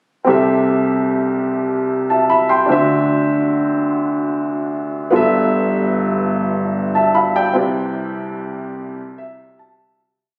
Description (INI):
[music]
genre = gospel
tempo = 50 BPM (dotted quarters)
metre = 6/8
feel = straight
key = C major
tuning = A4 = 438 Hz
[part]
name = warm upright piano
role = solo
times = 0.2-10.0 s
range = G1 to C6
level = -18 LUFS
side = equal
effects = none
[sound]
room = light reverb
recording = recorded on a phone in the room, studio reverb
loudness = -17 LUFS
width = mono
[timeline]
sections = 0.3-10.0 A section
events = fade-out 7.6-10.0; upright piano fill 8.8-10.0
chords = 0.3 C6; 2.7 D9; 5.1 G13; 7.6 Cmaj9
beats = | 0.29 1.50 | 2.71 3.92 | 5.14 6.35 | 7.56 8.77